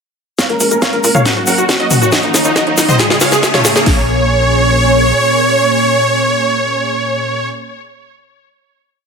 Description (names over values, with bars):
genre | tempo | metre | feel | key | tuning
uplifting trance | 138 BPM | 4/4 | straight | Bb minor | A4 = 440 Hz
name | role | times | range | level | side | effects
supersaw chords | melody | 0.4-7.5 s | Eb4 to Gb5 | -14 LUFS | right 1 dB | sidechain pumping, low-pass filter, ping-pong delay
plucky unison lead | second line | 0.4-7.5 s | Eb4 to Gb5 | -20 LUFS | left 1 dB | lush chorus, sidechain pumping, ping-pong delay
analog string pad | sustained chords | 0.4-7.5 s | Bb2 to C6 | -18 LUFS | right 1 dB | ensemble chorus, sidechain pumping
house drum kit | drums | 0.4-4.0 s | hi-hat, kick drum, snare drum | -17 LUFS | equal | high-pass filter on kick, high-pass filter on snare, high-pass filter on hats, high-pass filter on room
house drum kit | drums | 0.4-3.8 s | hi-hat, snare drum, toms | -14 LUFS | equal | none
egg shaker | percussion | 0.4-3.8 s | none | -20 LUFS | left 4 dB | none
riser | sound effects | 1.7-3.9 s | none | -21 LUFS | left 1 dB | none
tight sequencer bass | bass | 0.5-5.1 s | Eb1 to Bb2 | -20 LUFS | equal | tube saturation, sidechain pumping, high-pass filter
room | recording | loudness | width
moderate digital room reverb, RT60 1.3 s | none | -10 LUFS | side -5 dB against mid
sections
0.4-3.9 build; 3.9-7.3 final chord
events
build-up 0.4-3.9; drum fill 0.4-3.9; filter sweep on supersaw synth 0.4-3.9; filter sweep on digital synth lead 0.4-3.9; riser 1.7-3.9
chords
0.4 Bbm7; 1.3 Gb; 2.1 Ebm7; 3.0 Dbadd9; 3.9 Bbm7